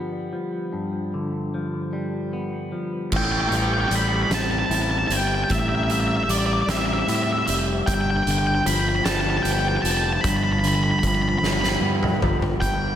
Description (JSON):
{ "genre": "post-rock", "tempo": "51 BPM (dotted quarters)", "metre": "6/8", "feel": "straight", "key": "unclear", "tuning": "A4 = 440 Hz", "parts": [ { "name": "semi-hollow electric guitar", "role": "arpeggios", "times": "0.0-13.0 s", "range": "G2 to E4", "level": "-26 LUFS", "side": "left 1 dB", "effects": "analog delay" }, { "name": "fuzz fingered electric bass", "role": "bass", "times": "3.1-13.0 s", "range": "F1 to A2", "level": "-25 LUFS", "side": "right 1 dB", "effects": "overdrive" }, { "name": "oversized low-tuned drum kit", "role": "drums", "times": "3.1-12.8 s", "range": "crash cymbal, hi-hat, kick drum, snare drum, toms", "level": "-26 LUFS", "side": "right 1 dB", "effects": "none" }, { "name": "octave-fuzz lead guitar", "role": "melody", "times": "3.2-13.0 s", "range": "D5 to B5", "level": "-24 LUFS", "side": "left 1 dB", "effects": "distortion, analog delay" } ], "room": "wet lush hall reverb, RT60 3.0 s", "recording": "dreamy mix soaked in reverb", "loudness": "-20 LUFS", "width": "side -10 dB against mid", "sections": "0.0-3.1 A section; 3.1-12.6 B section", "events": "drum fill 11.4-12.6", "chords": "0.0 G7; 3.1 Am7; 7.9 G7", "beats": "| 0.73 1.93 | 3.12 4.31 | 5.50 6.68 | 7.87 9.05 | 10.24 11.43 | 12.61" }